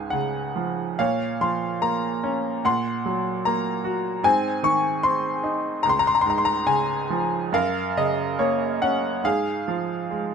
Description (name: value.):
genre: classical, lyrical solo piano.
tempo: 67-77 BPM.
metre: 4/4.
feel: rubato.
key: Db major.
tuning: A4 = 439 Hz.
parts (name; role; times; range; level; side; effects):
bright upright piano; solo; 0.0-10.3 s; Db2 to Db6; -21 LUFS; equal; none.
room: light reverb.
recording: minimal, uncompressed stereo recording.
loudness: -21 LUFS.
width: side -6 dB against mid.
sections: 0.0-10.3 A section.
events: none.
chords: 0.0 Db; 1.0 Bbm; 2.6 Gb/Bb; 4.2 Ab; 5.8 Db; 7.5 Gb; 9.2 Db/Ab (rootless).